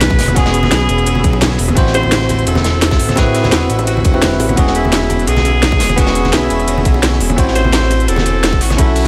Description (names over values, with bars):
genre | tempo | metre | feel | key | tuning
liquid drum and bass | 171 BPM | 4/4 | swing 53% on 16ths | unclear | A4 = 440 Hz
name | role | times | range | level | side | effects
bright alto saxophone | melody | 0.0-9.1 s | E4 to C5 | -23 LUFS | equal | dub echo
bell-like tine electric piano | accompaniment | 0.0-9.1 s | B3 to C5 | -20 LUFS | equal | dub echo
shimmering ambient pad | sustained chords | 0.0-9.1 s | C4 to E6 | -30 LUFS | equal | chorus, built-in reverb, sidechain pumping
smooth synth bass | bass | 0.0-9.1 s | E1 to B1 | -18 LUFS | equal | none
crunchy breakbeat drum kit | drums | 0.0-9.1 s | hi-hat, ride cymbal, snare drum | -25 LUFS | equal | high-pass filter on cymbals, high-pass filter on hats, high-pass filter on snare, high-pass filter on room
drum and bass drum kit | drums | 0.0-9.1 s | hi-hat, ride cymbal, rim click, snare drum | -21 LUFS | equal | none
congas and bongos | percussion | 0.0-9.1 s | none | -24 LUFS | equal | none
electronic kick drum | drums | 0.1-8.9 s | none | -16 LUFS | equal | none
room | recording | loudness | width
light reverb, small room ambience | none | -13 LUFS | mono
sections
0.0-9.1 A section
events
none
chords
0.0 E6; 1.8 Am6; 4.6 E6; 7.4 Am6